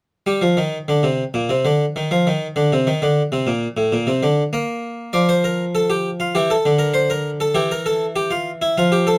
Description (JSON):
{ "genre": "classical, baroque-style two-part invention for harpsichord", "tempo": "99 BPM", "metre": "4/4", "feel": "straight", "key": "unclear", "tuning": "A4 = 440 Hz", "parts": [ { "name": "harpsichord", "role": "solo", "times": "0.3-9.2 s", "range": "A2 to D5", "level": "-19 LUFS", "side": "equal", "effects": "none" } ], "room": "light reverb", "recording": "close, detailed microphones", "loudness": "-19 LUFS", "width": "mono", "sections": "0.3-9.2 A section", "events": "none", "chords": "0.3 N.C.; 5.1 Dm/F; 6.3 Edim; 7.6 A5/E" }